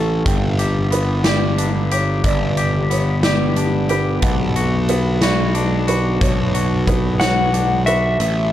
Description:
post-rock; 60 BPM (dotted quarters); 6/8; straight; A4 = 440 Hz
deep dark ambient pad; sustained chords; 0.2-8.5 s; C#3 to G4; -30 LUFS; equal
felt-muted upright piano; arpeggios; 0.0-8.5 s; A4 to G5; -26 LUFS; right 4 dB; tape echo
twangy electric guitar; arpeggios; 0.0-8.5 s; G2 to A4; -24 LUFS; left 4 dB; tape echo
fuzz picked electric bass; bass; 0.0-8.5 s; G1 to B1; -19 LUFS; equal; overdrive
big rock drum kit; drums; 0.3-8.4 s; hi-hat, kick drum, snare drum; -22 LUFS; equal
clean lap steel guitar; melody; 7.2-8.5 s; E5 to F#5; -18 LUFS; left 2 dB; tape echo
light reverb; dark, warm production; -15 LUFS; side -12 dB against mid
0.0-8.2 A section
0.3 G; 4.2 Bm

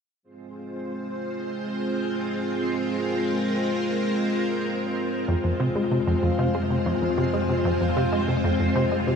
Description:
ambient, sequencer-driven space music; 95 BPM; 4/4; straight; F minor; A4 = 442 Hz
string machine, full ensemble; sustained chords; 0.2-9.2 s; Ab3 to C5; -25 LUFS; equal; ensemble chorus
bubbling stepped-filter texture; texture; 1.6-9.2 s; C5; -38 LUFS; left 2 dB; chorus, built-in reverb
vibraphone with soft mallets; arpeggios; 5.3-9.2 s; F4 to F5; -30 LUFS; moving between left 4 dB and right 2 dB; auto-pan, ping-pong delay
plucky analog bass; riff; 5.3-9.1 s; F2 to Ab3; -24 LUFS; equal; wide subtle chorus, ping-pong delay
analog drone; bass; 6.0-9.2 s; F2; -32 LUFS; right 1 dB; chorus
wet cathedral reverb, RT60 6.0 s; in a vast, echoing space; -22 LUFS; side -6 dB against mid
0.2-5.3 A section; 5.3-9.2 B section
fade-in on synth texture 0.2-5.3
0.2 Fm

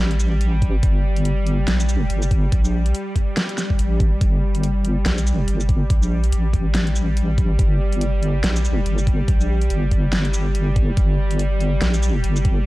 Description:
deep dubstep; 142 BPM; 4/4; swing 58% on 16ths, half-time; G minor; A4 = 440 Hz
bowed-like drone; sustained chords; 0.0-12.7 s; G3; -27 LUFS; equal; built-in reverb
deep soft wobble bass; bass; 0.0-12.6 s; G1 to Bb1; -19 LUFS; equal; chorus, transformer saturation
dubstep drum kit; drums; 0.1-12.5 s; hi-hat, shaker, snare drum; -26 LUFS; equal; overdrive
electronic kick drum; drums; 0.6-12.5 s; -18 LUFS; equal; overdrive
little or no reverb; dry, gritty hardware recording, cassette tape; -17 LUFS; side -18 dB against mid
0.0-12.7 A section
0.0 Gmadd9

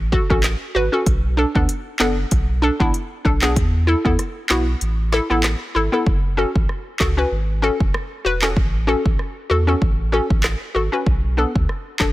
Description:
dancehall; 96 BPM; 4/4; swing 56% on 16ths; F# minor; A4 = 440 Hz
warm sub bass; bass; 0.0-12.1 s; E1 to E2; -21 LUFS; equal
hollow square pluck; accompaniment; 0.1-12.1 s; B3 to B4; -21 LUFS; left 1 dB; chorus
afro-pop drum kit; drums; 0.1-12.1 s; handclaps, hi-hat, kick drum, rim click, snare drum; -20 LUFS; equal
little or no reverb; -17 LUFS; side -17 dB against mid
0.0-6.1 A section; 6.1-12.1 B section
kick muted 4.8-6.1
0.0 A6; 1.1 Bm7; 3.6 Esus4; 6.1 F#m; 8.6 A6; 11.1 Bm7

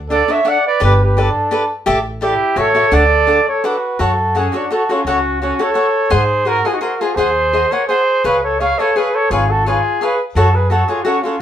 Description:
mexican folk, mariachi; 170 BPM; 3/4; swing 54% on 8ths, rubato; D major, F# harmonic minor from 4.0 s; A4 = 440 Hz
upright bass; bass; 0.0-10.8 s; G1 to G#2; -18 LUFS; equal
warm trumpet; melody; 0.1-11.4 s; E#4 to F#5; -16 LUFS; right 1 dB
warm trumpet; second line; 0.1-11.4 s; C#4 to D5; -21 LUFS; right 2 dB
cavaquinho; accompaniment; 0.1-11.4 s; D4 to F#5; -18 LUFS; left 2 dB
moderate studio reverb, RT60 0.5 s; band playing live in one room; -13 LUFS; side -10 dB against mid
0.0-4.0 A section; 4.0-11.4 B section
0.0 D; 0.8 Gadd9; 1.9 A7sus4; 2.6 A6; 2.9 D; 4.0 F#m; 6.1 G#7; 8.2 C#7; 10.4 F#m

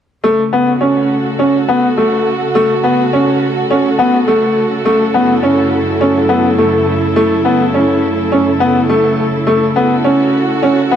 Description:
electronica; 104 BPM; 4/4; straight; F# minor; A4 = 440 Hz
muted studio string section; sustained chords; 0.2-11.0 s; F#2 to A4; -15 LUFS; right 2 dB
bright upright piano; riff; 0.2-11.0 s; A3 to C#4; -12 LUFS; left 1 dB; digital delay
moderate echo chamber reverb, RT60 1.9 s; -10 LUFS; side -9 dB against mid
0.2-11.0 A section
0.2 F#m; 4.9 A/F#; 9.5 F#m

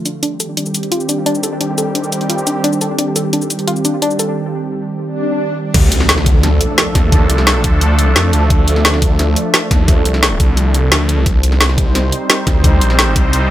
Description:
dark technical drum and bass; 174 BPM; 4/4; straight; D phrygian; A4 = 440 Hz
sweeping resonant pad; sustained chords; 0.0-13.5 s; D3 to C5; -19 LUFS; right 1 dB; chorus, sidechain pumping
warbly dusty pluck; arpeggios; 0.1-4.3 s; D4 to A4; -19 LUFS; left 1 dB; chorus, sidechain pumping, dub echo
drum and bass drum kit; drums; 0.1-13.4 s; cabasa, crash cymbal, hi-hat, snare drum; -15 LUFS; equal; overdrive
swell and impact; sound effects; 5.1-7.1 s; -20 LUFS; equal
snarling distorted saw bass; bass; 5.7-13.5 s; Bb1 to F2; -14 LUFS; equal; distortion, overdrive, sidechain pumping
electronic kick drum; drums; 5.7-13.2 s; -13 LUFS; equal; overdrive
light reverb; -11 LUFS; side -13 dB against mid
0.0-5.7 A section; 5.7-13.5 B section
filter sweep on synth arpeggio sound 0.0-5.7; break 4.4-5.7; swell 5.1-5.7; drop 5.7-13.5; impact 5.7-7.1
0.2 Cm; 5.7 Dm; 11.3 Cm

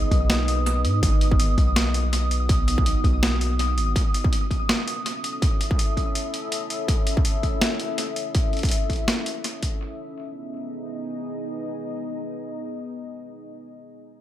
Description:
half-time drum and bass; 164 BPM; 4/4; swing 57% on 16ths, half-time; G# phrygian; A4 = 439 Hz
deep dark ambient pad; sustained chords; 0.0-13.5 s; B3 to E5; -30 LUFS; equal; chorus, built-in reverb, sidechain pumping
long sustained 808-style bass; bass; 0.0-3.9 s; G#1 to G#2; -22 LUFS; equal; tube saturation
pulsing gated texture; texture; 0.0-9.8 s; D#6; -32 LUFS; equal; chorus, built-in reverb
boom bap sampler-style drum kit; drums; 0.1-9.7 s; hi-hat, snare drum; -27 LUFS; equal; analog delay
electronic kick drum; drums; 0.1-9.7 s; -22 LUFS; equal; distortion
light reverb; echo-heavy mix; -21 LUFS; side -12 dB against mid
0.0-9.8 A section; 9.8-12.7 B section
0.0 G#m; 4.0 A; 9.8 G#m

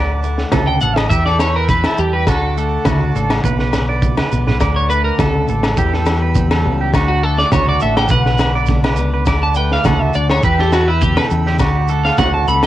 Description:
highlife guitar band; 103 BPM; 4/4; straight; D major; A4 = 436 Hz
clean electric guitar; accompaniment; 0.0-12.7 s; E2 to G4; -24 LUFS; left 7 dB; cassette tape
accordion; sustained chords; 0.0-12.7 s; F#5 to E6; -29 LUFS; right 2 dB; cassette tape
clean electric guitar; arpeggios; 0.0-12.7 s; F#4 to D5; -22 LUFS; right 6 dB; spring reverb, cassette tape, tape echo
fingered electric bass; bass; 0.0-12.7 s; A1 to E2; -18 LUFS; equal
congas; percussion; 0.2-12.6 s; -23 LUFS; right 4 dB
shekere; percussion; 0.2-12.6 s; -24 LUFS; right 4 dB
crunchy breakbeat drum kit; drums; 0.4-12.7 s; kick drum, snare drum; -20 LUFS; equal
agogo bells; percussion; 0.5-12.7 s; -27 LUFS; left 8 dB
electric guitar at the edge of break-up; melody; 0.7-12.7 s; E4 to B5; -18 LUFS; equal; wide subtle chorus, cassette tape
light reverb; home recording on cassette; -13 LUFS; side -14 dB against mid
0.0-12.7 A section
clean electric guitar solo 0.0-12.7; drum fill 4.2-4.6
0.0 D; 1.1 Em; 2.3 D; 3.4 Bm; 4.6 D; 5.8 Em; 6.9 D; 8.1 Bm; 9.3 D; 10.4 Em; 11.6 D

